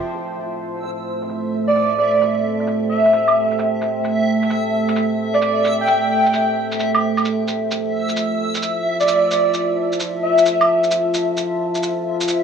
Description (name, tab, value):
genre	future garage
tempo	131 BPM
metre	4/4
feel	swing 67% on 16ths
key	A minor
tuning	A4 = 439 Hz
part	deep dark ambient pad	sustained chords	0.0-12.4 s	A3 to A5	-21 LUFS	right 2 dB	chorus, built-in reverb
part	backwards swelling texture	texture	0.8-12.4 s	E5	-26 LUFS	left 2 dB	built-in reverb
part	shaker and claves	drums	0.1-12.4 s	none	-24 LUFS	right 2 dB	low-pass filter on perc, low-pass filter on snare, low-pass filter on room
part	airy dreamy lead	melody	1.7-10.9 s	D5 to G5	-18 LUFS	equal	chorus, tape echo
room	moderate lush hall reverb, RT60 2.2 s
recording	dry, gritty hardware recording, cassette tape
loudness	-16 LUFS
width	side -7 dB against mid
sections	0.0-12.4 A section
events	filter sweep on drum 0.0-12.4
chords	0.0 Am7; 7.2 Fmaj7